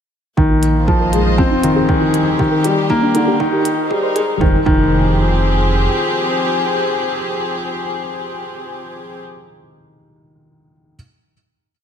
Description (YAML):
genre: piano and strings electronica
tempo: 119 BPM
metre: 4/4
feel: straight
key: F minor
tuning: A4 = 440 Hz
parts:
  - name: dark studio string section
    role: sustained chords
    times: 0.4-9.2 s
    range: Eb3 to Eb5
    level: -20 LUFS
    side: left 2 dB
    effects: sidechain pumping
  - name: soft round pluck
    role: arpeggios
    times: 0.4-4.8 s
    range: D4 to C5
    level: -22 LUFS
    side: right 3 dB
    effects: chorus, sidechain pumping, digital delay
  - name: felt-muted upright piano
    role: riff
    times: 0.4-11.0 s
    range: D3 to C4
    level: -16 LUFS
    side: left 1 dB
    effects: digital delay
  - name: dark detuned saw bass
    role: bass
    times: 0.4-5.9 s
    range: Eb1 to Bb1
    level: -20 LUFS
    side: right 1 dB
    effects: sidechain pumping
  - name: electronic kick drum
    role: drums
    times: 0.4-4.8 s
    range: none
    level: -18 LUFS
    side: right 1 dB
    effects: none
  - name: electronic hi-hat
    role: drums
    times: 0.6-4.3 s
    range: none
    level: -28 LUFS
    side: right 1 dB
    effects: overdrive, high-pass filter on hats, high-pass filter on room
room: moderate echo chamber reverb, RT60 1.5 s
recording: high-pass filter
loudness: -13 LUFS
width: side -8 dB against mid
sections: 0.4-4.4 build; 4.4-8.4 final chord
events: build-up 0.4-4.4; filter sweep on synth arpeggio sound 0.4-4.4; filter sweep 0.4-4.4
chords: 0.4 Bb7sus4; 1.4 Fm7; 2.4 Ebmaj7; 3.4 Abmaj7; 4.4 Fm7